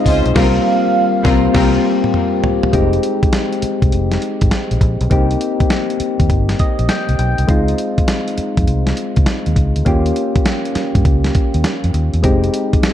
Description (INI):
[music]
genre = R&B, new jack swing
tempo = 101 BPM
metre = 4/4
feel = swing 66% on 16ths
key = F minor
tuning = A4 = 439 Hz
[part]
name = warm velvety synth lead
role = melody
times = 0.0-2.1 s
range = Eb5 to F5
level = -19 LUFS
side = right 5 dB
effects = chorus, tape echo
[part]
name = soft electric-piano-like synth keys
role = accompaniment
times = 0.0-12.9 s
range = G3 to G5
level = -17 LUFS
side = left 2 dB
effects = chorus
[part]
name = muted studio string section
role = stabs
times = 0.1-1.8 s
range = C4 to C5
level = -24 LUFS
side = left 3 dB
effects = tape echo
[part]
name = vintage muted fingered electric bass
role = bass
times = 0.1-12.8 s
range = F1 to G2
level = -17 LUFS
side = equal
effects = none
[part]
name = dusty soul sampler-style drum kit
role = drums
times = 0.1-12.9 s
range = crash cymbal, hi-hat, kick drum, snare drum, tambourine, toms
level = -17 LUFS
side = equal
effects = none
[sound]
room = moderate plate reverb, RT60 1.8 s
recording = dark, warm production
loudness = -13 LUFS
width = side -11 dB against mid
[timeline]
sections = 0.0-2.7 A section; 2.7-12.9 B section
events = band accent 0.4-2.7; drum fill 1.5-2.7; synth keys fill 6.3-7.5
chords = 0.4 C7sus4; 2.7 Fm7; 5.1 Cm7; 7.5 Dbmaj7; 9.9 Eb7; 12.2 Fm7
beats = | 0.36 0.95 1.55 2.14 | 2.73 3.33 3.92 4.52 | 5.11 5.70 6.30 6.89 | 7.49 8.08 8.68 9.27 | 9.86 10.46 11.05 11.64 | 12.24 12.83